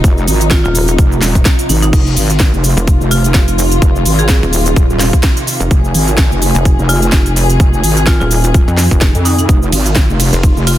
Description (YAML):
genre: bass house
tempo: 127 BPM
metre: 4/4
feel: swing 56% on 16ths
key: F minor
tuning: A4 = 440 Hz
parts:
  - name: muted studio string section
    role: sustained chords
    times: 0.0-10.8 s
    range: C3 to Ab4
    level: -21 LUFS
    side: left 2 dB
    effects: sidechain pumping
  - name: pulsing pluck wobble bass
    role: bass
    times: 0.0-10.5 s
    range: Eb1 to F2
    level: -13 LUFS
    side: equal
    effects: chorus, tube saturation, sidechain pumping
  - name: wobble bass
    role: bass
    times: 0.0-10.8 s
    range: Eb1 to F2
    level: -13 LUFS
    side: equal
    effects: chorus, tube saturation, sidechain pumping
  - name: electronic kick drum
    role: drums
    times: 0.0-10.5 s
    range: none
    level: -10 LUFS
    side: equal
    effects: none
  - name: house drum kit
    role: drums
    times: 0.0-10.8 s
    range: crash cymbal, hi-hat, ride cymbal, shaker, snare drum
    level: -17 LUFS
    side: equal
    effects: none
  - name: deep dark ambient pad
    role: texture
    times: 0.0-10.8 s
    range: F4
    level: -23 LUFS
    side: right 1 dB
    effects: chorus, built-in reverb, sidechain pumping
  - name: marimba with medium hard mallets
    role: melody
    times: 0.5-10.8 s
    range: Eb4 to Ab4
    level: -22 LUFS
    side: right 2 dB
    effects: vintage 12-bit sampler grit, digital delay
room: little or no reverb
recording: dense, heavily limited modern master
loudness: -9 LUFS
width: side -13 dB against mid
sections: 0.0-10.8 A section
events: none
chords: 0.0 F5